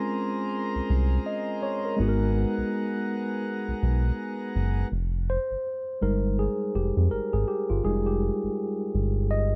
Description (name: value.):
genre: R&B.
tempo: 82 BPM.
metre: 4/4.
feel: swing 59% on 16ths.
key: F minor.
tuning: A4 = 440 Hz.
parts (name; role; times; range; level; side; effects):
mellow tine electric piano; accompaniment; 0.0-9.6 s; G3 to Eb5; -30 LUFS; equal; none.
pedal harmonium; sustained chords; 0.0-4.9 s; Cb4 to Bb5; -36 LUFS; equal; none.
round analog bass; bass; 0.8-9.6 s; F1 to F2; -27 LUFS; equal; none.
room: small room ambience.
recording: dry, close 1970s-style studio recording.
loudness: -27 LUFS.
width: mono.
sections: 0.0-4.9 A section; 4.9-9.6 B section.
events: tine electric piano solo 4.9-9.6.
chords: 0.0 Bbm9; 2.0 Abm9; 4.9 Fm9.